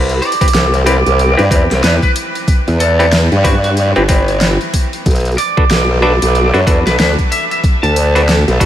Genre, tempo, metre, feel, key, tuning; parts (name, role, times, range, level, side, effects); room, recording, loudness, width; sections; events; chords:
glitch hop; 93 BPM; 4/4; swing 60% on 16ths; A4 = 442 Hz
clav; stabs; 0.0-8.7 s; C4 to B4; -18 LUFS; left 1 dB; sidechain pumping, diffuse ambient delay
formant-sweep wobble bass; bass; 0.0-8.7 s; G1 to G2; -12 LUFS; equal; chorus, overdrive
dubstep drum kit; drums; 0.1-8.7 s; hi-hat, snare drum; -19 LUFS; equal; overdrive
lightly driven lead guitar; melody; 0.2-8.3 s; F#4 to A5; -18 LUFS; right 1 dB; lush chorus, diffuse ambient delay
electronic kick drum; drums; 0.4-8.7 s; -13 LUFS; equal; overdrive
light reverb, digital ambience; vinyl crackle; -10 LUFS; side -11 dB against mid
0.0-8.7 A section
0.0 Cmaj7; 5.1 Bm7